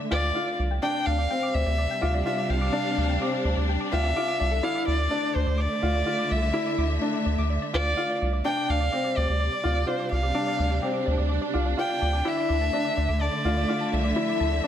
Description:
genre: piano and strings electronica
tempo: 126 BPM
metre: 4/4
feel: straight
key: D minor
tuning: A4 = 441 Hz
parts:
  - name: warm symphonic string section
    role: sustained chords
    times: 0.0-14.7 s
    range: C3 to E5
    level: -31 LUFS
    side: equal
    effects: none
  - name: soft round pluck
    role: arpeggios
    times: 0.0-14.7 s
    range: A4 to D6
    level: -36 LUFS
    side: right 2 dB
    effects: chorus, digital delay
  - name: dark violin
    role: melody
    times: 0.1-14.7 s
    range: C5 to G5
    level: -28 LUFS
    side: equal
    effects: digital delay
  - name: warm upright piano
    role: riff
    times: 0.1-14.7 s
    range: C4 to F4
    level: -30 LUFS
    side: left 2 dB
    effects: digital delay
  - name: round analog bass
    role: bass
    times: 0.1-14.6 s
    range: C2 to D2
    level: -26 LUFS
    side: equal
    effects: none
room: light reverb, studio ambience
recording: none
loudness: -23 LUFS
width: side -10 dB against mid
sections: 0.0-14.7 A section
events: none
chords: 0.0 Dmadd9; 0.8 Csus4; 4.6 Dmadd9; 8.4 Csus4; 12.3 Dmadd9

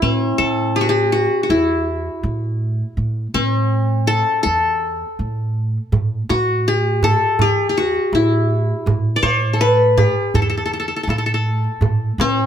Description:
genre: Arabic maqam ensemble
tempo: 81 BPM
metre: 4/4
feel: straight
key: A maqam rast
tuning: A4 = 440 Hz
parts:
  - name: qanun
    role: melody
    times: 0.0-12.5 s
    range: C4+50c to D5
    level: -17 LUFS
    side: left 2 dB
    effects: plate reverb
  - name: upright bass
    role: bass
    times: 0.0-12.5 s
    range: E2 to A2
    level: -21 LUFS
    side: right 1 dB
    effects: none
  - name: darbuka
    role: percussion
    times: 5.9-12.5 s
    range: none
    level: -20 LUFS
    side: right 4 dB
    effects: none
room: light reverb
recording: none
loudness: -16 LUFS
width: side -9 dB against mid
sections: 0.0-12.5 A section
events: none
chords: none

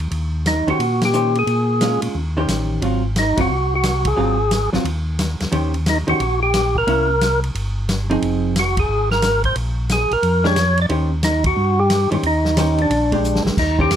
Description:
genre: soul jazz organ trio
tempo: 178 BPM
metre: 4/4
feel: swing 64% on 8ths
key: Eb mixolydian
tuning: A4 = 443 Hz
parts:
  - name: mellow tonewheel organ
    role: bass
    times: 0.0-14.0 s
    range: F1 to Bb2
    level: -21 LUFS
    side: equal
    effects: overdrive, chorus vibrato, slow rotary speaker
  - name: vintage drum kit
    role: drums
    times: 0.0-14.0 s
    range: crash cymbal, hi-hat, kick drum, ride cymbal, snare drum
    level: -24 LUFS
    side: equal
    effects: none
  - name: percussive tonewheel organ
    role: melody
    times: 0.5-14.0 s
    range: D4 to D5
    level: -18 LUFS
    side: equal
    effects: slow rotary speaker, overdrive
  - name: vintage hollow-body jazz guitar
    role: accompaniment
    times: 0.7-13.9 s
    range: Eb3 to C5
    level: -21 LUFS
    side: right 1 dB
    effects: none
room: light reverb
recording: close, detailed microphones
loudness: -16 LUFS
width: side -9 dB against mid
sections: 0.0-13.6 A section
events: band accent 1.0, 4.0, 8.7, 11.4; drum fill 13.2-13.6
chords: 0.1 Eb6; 1.5 Bbm7; 2.1 Eb6; 2.8 Ab6; 5.5 Eb6; 6.9 C7b9; 8.2 Fm7; 9.6 Bb5; 10.9 Eb6; 12.9 Bb6

